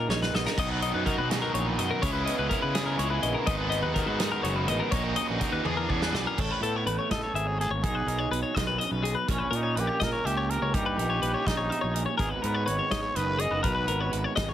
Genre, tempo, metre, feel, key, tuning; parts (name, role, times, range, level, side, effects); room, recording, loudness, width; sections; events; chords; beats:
math rock and midwest emo; 83 BPM (dotted quarters); 6/8; straight; A4 = 441 Hz
electric guitar through a small old amp; accompaniment; 0.0-14.5 s; F#2 to C#5; -34 LUFS; right 6 dB
twelve-string electric guitar; arpeggios; 0.0-14.5 s; G#4 to E5; -30 LUFS; left 6 dB; tape echo
fuzz fingered electric bass; bass; 0.0-14.5 s; F#1 to C#3; -31 LUFS; equal; overdrive
loose indie drum kit; drums; 0.1-14.5 s; crash cymbal, hi-hat, kick drum, snare drum, toms; -32 LUFS; right 1 dB
biting overdriven guitar; riff; 0.6-6.4 s; G#2 to G#4; -31 LUFS; equal
growling trumpet; melody; 7.1-14.2 s; C#4 to D#5; -31 LUFS; equal; tape echo
light reverb; heavily compressed radio sound, multiband compression; -25 LUFS; side -11 dB against mid
0.0-6.4 A section; 6.4-14.5 B section
drum fill 0.0-0.6, 5.7-6.4
0.0 D#5/A#; 0.6 Bmaj7; 2.0 C#m7; 3.5 G#m7; 4.9 D#m7/A#; 5.7 E13; 6.4 Amaj9; 7.8 B69; 9.3 D#7/A#; 12.2 G#m7
| 0.58 1.30 | 2.03 2.75 | 3.48 4.20 | 4.93 5.66 | 6.38 7.11 | 7.84 8.56 | 9.29 10.02 | 10.74 11.47 | 12.20 12.93 | 13.65 14.38